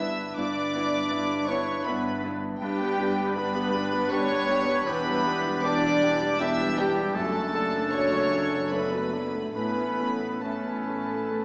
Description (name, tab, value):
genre	cinematic, emotional film score for orchestra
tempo	68-82 BPM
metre	3/4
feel	rubato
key	unclear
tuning	A4 = 442 Hz
part	warm studio violin section	melody	0.0-11.4 s	G5 to E6	-35 LUFS	equal	none
part	clear clarinet	second line	0.0-11.4 s	C#4 to D4	-37 LUFS	equal	none
part	clear oboe	second line	0.0-11.4 s	G4 to B4	-38 LUFS	equal	none
part	hollow large flute ensemble	second line	0.0-11.4 s	G4 to E5	-36 LUFS	equal	none
part	rich studio violin section	second line	0.0-11.4 s	G4 to E5	-37 LUFS	equal	none
part	clear concert grand piano	accompaniment	0.0-11.4 s	E2 to A4	-36 LUFS	equal	none
part	rich chamber viola section	accompaniment	0.0-11.4 s	E3 to G4	-38 LUFS	equal	none
part	warm French horn section	sustained chords	0.0-11.4 s	G3 to C#5	-34 LUFS	equal	none
part	concert harp	arpeggios	0.0-11.4 s	E2 to B4	-40 LUFS	equal	none
part	rich studio double bass section	bass	0.0-11.4 s	E1 to A1	-44 LUFS	equal	none
part	warm studio cello section	bass	0.0-11.4 s	E2 to A2	-40 LUFS	equal	none
room	wet concert hall reverb, RT60 1.8 s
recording	small speaker sound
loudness	-27 LUFS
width	mono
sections	0.0-11.4 A section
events	none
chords	0.0 Em7/G; 2.6 G; 4.9 Em7; 7.1 D/F#; 9.6 Aadd9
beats	| 0.39 1.13 1.87 | 2.62 3.37 4.11 | 4.87 5.63 6.40 | 7.15 7.92 8.71 | 9.55 10.43 11.29